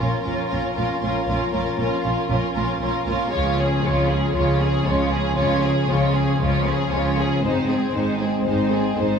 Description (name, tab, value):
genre	cinematic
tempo	117 BPM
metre	4/4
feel	straight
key	unclear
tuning	A4 = 440 Hz
part	warm symphonic violin section	melody	0.0-9.2 s	Ab4 to Db5	-28 LUFS	left 3 dB	none
part	dark symphonic violin section	second line	0.0-9.2 s	C4 to Ab4	-26 LUFS	right 1 dB	none
part	dark symphonic viola section	accompaniment	0.0-9.2 s	Ab3 to Db4	-29 LUFS	right 2 dB	none
part	mellow French horn section	sustained chords	0.0-9.2 s	F3 to Db4	-27 LUFS	left 4 dB	none
part	rich studio double bass section	bass	0.0-9.2 s	Ab1 to Db2	-25 LUFS	right 1 dB	none
part	rich symphonic cello section	bass	0.0-9.2 s	Ab2 to Db3	-26 LUFS	right 1 dB	none
room	wet scoring stage reverb, RT60 1.7 s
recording	small room ambience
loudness	-19 LUFS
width	side -6 dB against mid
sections	0.0-9.2 A section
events	none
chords	0.0 Bbm; 3.3 Db; 7.4 Ab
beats	0.24 0.76 | 1.27 1.78 2.29 2.80 | 3.32 3.83 4.34 4.86 | 5.37 5.88 6.40 6.92 | 7.43 7.95 8.46 8.99